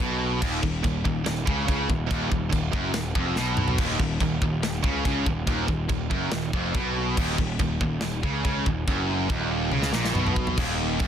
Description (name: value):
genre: heavy metal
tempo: 142 BPM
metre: 4/4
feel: straight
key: Eb minor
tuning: A4 = 440 Hz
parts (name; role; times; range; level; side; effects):
- heavy high-gain guitar; riff; 0.0-11.1 s; Eb2 to Db3; -29 LUFS; right 11 dB; distortion
- tight distorted guitar; riff; 0.0-11.1 s; Eb2 to Db3; -30 LUFS; left 12 dB; distortion
- fuzz picked electric bass; bass; 0.0-11.1 s; Eb1 to Db2; -29 LUFS; equal; overdrive
- modern studio drum kit; drums; 0.0-11.1 s; china cymbal, crash cymbal, hi-hat, kick drum, snare drum, toms; -28 LUFS; equal; none
room: studio reverb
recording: dense, heavily limited modern master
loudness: -23 LUFS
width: side -9 dB against mid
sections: 0.0-10.6 A section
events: drum fill 3.4-3.8, 9.7-10.6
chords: 0.0 Ebm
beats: | 0.41 0.83 1.25 1.68 | 2.10 2.52 2.94 3.36 | 3.79 4.21 4.63 5.05 | 5.48 5.90 6.32 6.75 | 7.17 7.60 8.02 8.45 | 8.87 9.30 9.72 10.15 | 10.58 11.00